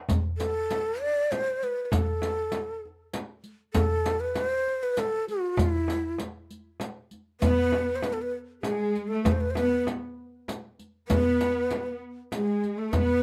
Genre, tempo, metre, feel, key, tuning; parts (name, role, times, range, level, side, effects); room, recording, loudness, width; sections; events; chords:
Arabic maqam ensemble; 98 BPM; 3/4; straight; A4 = 438 Hz
darbuka; percussion; 0.1-13.1 s; -32 LUFS; equal
frame drum; percussion; 0.1-13.1 s; -36 LUFS; equal
riq; percussion; 0.1-13.1 s; -37 LUFS; equal
breathy ney; melody; 0.4-13.2 s; E4 to D5; -30 LUFS; equal; plate reverb
rich symphonic cello section; second line; 7.4-13.2 s; G#3 to B3; -31 LUFS; equal
light reverb; dark, warm production; -27 LUFS; mono
0.0-7.4 A section; 7.4-13.2 B section